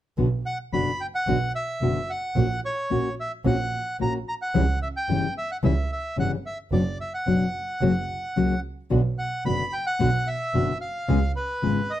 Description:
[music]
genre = tango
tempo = 110 BPM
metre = 4/4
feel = rubato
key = B harmonic minor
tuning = A4 = 439 Hz
[part]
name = nylon-string guitar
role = accompaniment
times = 0.2-11.8 s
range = B2 to G#4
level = -24 LUFS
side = left 4 dB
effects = none
[part]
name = warm double bass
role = bass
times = 0.2-11.9 s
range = F#1 to C#2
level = -26 LUFS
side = right 3 dB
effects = none
[part]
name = bandoneon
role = melody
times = 0.5-12.0 s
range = B4 to B5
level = -28 LUFS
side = equal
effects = none
[sound]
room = light reverb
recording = close, detailed microphones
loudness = -23 LUFS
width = side -12 dB against mid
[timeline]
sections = 0.2-12.0 A section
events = none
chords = 0.2 Bm; 2.4 F#/A#; 4.5 C#dim; 6.7 Bm/F#; 7.8 F#; 8.9 Bm; 11.1 C#7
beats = | 0.18 0.72 1.27 1.82 | 2.36 2.91 3.45 4.00 | 4.54 5.09 5.63 6.17 | 6.72 7.27 7.81 8.36 | 8.91 9.45 10.00 10.54 | 11.09 11.63

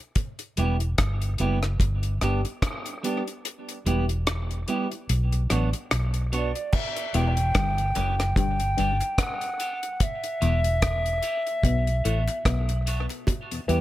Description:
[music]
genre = dub reggae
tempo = 73 BPM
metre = 4/4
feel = swing 57% on 16ths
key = E minor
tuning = A4 = 440 Hz
[part]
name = deep reggae drum kit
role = drums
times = 0.2-13.8 s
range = crash cymbal, hi-hat, kick drum, rim click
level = -27 LUFS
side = equal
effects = none
[part]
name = clean electric guitar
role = accompaniment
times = 0.6-13.8 s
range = F#3 to G4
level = -31 LUFS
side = right 3 dB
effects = high-pass filter, tape echo
[part]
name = vintage muted fingered electric bass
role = bass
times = 0.6-13.8 s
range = E1 to E2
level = -25 LUFS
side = equal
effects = none
[part]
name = concert flute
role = melody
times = 6.4-12.6 s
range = D5 to G5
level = -28 LUFS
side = equal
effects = tape echo
[part]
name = bongos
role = percussion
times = 6.7-13.5 s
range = none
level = -39 LUFS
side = right 3 dB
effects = high-pass filter on perc, tape echo
[part]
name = mellow tonewheel organ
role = accompaniment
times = 7.0-13.6 s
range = E2 to G4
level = -44 LUFS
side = left 3 dB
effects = none
[part]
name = muted clav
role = riff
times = 7.1-13.8 s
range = E2 to E3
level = -31 LUFS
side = left 5 dB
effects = phaser, tape echo
[sound]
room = light reverb, small room ambience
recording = none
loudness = -23 LUFS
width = side -15 dB against mid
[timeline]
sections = 0.0-6.7 A section; 6.7-13.8 B section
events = break 0.0; kick muted 3.4-6.7; filter sweep 3.4-13.3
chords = 0.2 Em; 1.8 G; 3.4 Em; 5.1 Bm; 6.7 Em; 8.4 G; 10.0 Em; 11.6 Bm; 13.3 Em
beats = | 0.16 0.98 1.80 2.63 | 3.45 4.27 5.09 5.91 | 6.73 7.55 8.37 9.19 | 10.01 10.82 11.64 12.46 | 13.28

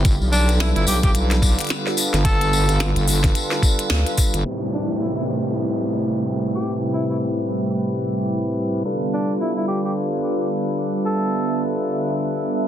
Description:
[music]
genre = glitch hop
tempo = 109 BPM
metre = 4/4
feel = swing 59% on 16ths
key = A minor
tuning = A4 = 439 Hz
[part]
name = warm analog pad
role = sustained chords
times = 0.0-12.7 s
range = C3 to E5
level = -25 LUFS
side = right 1 dB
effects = chorus, sidechain pumping
[part]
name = tonewheel organ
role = stabs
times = 0.0-12.7 s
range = A2 to B4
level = -25 LUFS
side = equal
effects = slow rotary speaker, sidechain pumping, low-pass filter, tape echo
[part]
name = wobble bass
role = bass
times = 0.0-4.4 s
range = G1 to D2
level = -19 LUFS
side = equal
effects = chorus, tube saturation
[part]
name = electronic kick drum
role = drums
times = 0.0-4.3 s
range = none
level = -18 LUFS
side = equal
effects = none
[part]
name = glitchy drum kit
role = drums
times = 0.1-4.6 s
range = crash cymbal, hi-hat, snare drum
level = -25 LUFS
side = left 1 dB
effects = soft clipping on snare
[part]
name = tambourine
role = percussion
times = 0.1-4.4 s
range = none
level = -28 LUFS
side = left 4 dB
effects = none
[part]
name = breathy tenor saxophone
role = melody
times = 0.3-11.6 s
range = D4 to A4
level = -28 LUFS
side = equal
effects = tape echo
[part]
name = downlifter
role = sound effects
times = 4.5-8.9 s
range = none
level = -29 LUFS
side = equal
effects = none
[sound]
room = moderate studio reverb, RT60 0.6 s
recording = dense, heavily limited modern master, low-pass filter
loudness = -18 LUFS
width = side -10 dB against mid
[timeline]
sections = 0.0-4.5 A section; 4.5-12.7 B section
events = band accent 3.9; filter sweep on analog synth pad 4.5-12.7; filter sweep 4.5-12.7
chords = 0.1 G7; 4.5 Am7; 8.9 G7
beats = | 0.05 0.60 1.15 1.70 | 2.25 2.80 3.35 3.90 | 4.46 5.01 5.56 6.11 | 6.66 7.21 7.76 8.31 | 8.86 9.41 9.96 10.51 | 11.06 11.61 12.16

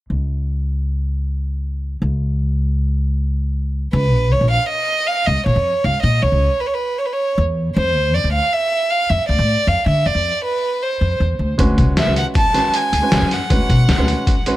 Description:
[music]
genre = progressive instrumental, band music in an uneven meter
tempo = 157 BPM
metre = 5/4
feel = straight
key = unclear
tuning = A4 = 440 Hz
[part]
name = upright bass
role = bass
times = 0.1-14.1 s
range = Bb1 to D3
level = -17 LUFS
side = equal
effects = none
[part]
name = rich violin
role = melody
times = 3.9-14.5 s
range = Cb5 to A5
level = -18 LUFS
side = right 1 dB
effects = analog delay
[part]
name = warm grand piano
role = accompaniment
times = 11.6-14.6 s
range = Ab3 to Cb5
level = -22 LUFS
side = right 2 dB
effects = none
[part]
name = trip hop sampler-style drum kit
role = drums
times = 11.6-14.6 s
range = hi-hat, kick drum, snare drum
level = -18 LUFS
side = left 1 dB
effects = none
[sound]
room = light reverb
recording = none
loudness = -15 LUFS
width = side -15 dB against mid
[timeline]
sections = 0.1-3.9 A section; 3.9-14.6 B section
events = none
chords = 0.1 N.C.; 7.8 F5; 11.6 D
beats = | 0.10 0.48 0.87 1.25 1.64 | 2.02 2.40 2.79 3.17 3.55 | 3.93 4.32 4.70 5.08 5.46 | 5.85 6.23 6.61 6.99 7.38 | 7.76 8.14 8.53 8.91 9.29 | 9.67 10.06 10.44 10.82 11.21 | 11.59 11.97 12.35 12.74 13.12 | 13.50 13.89 14.27

